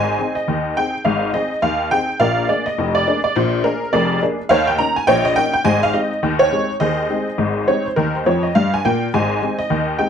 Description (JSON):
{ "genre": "ragtime piano", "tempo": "104 BPM", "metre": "2/4", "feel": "swing 60% on 16ths", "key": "Ab major", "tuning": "A4 = 440 Hz", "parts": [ { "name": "honky-tonk upright piano", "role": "solo", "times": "0.0-10.1 s", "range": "F1 to Bb5", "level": "-16 LUFS", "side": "equal", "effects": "none" } ], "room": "moderate studio reverb, RT60 0.8 s", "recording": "none", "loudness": "-16 LUFS", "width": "side -8 dB against mid", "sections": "0.0-10.1 A section", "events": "honky-tonk piano fill 8.3-9.1", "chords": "0.0 Ab; 2.2 Bb7; 4.5 Eb5; 5.7 Ab; 8.0 Eb; 9.1 Ab" }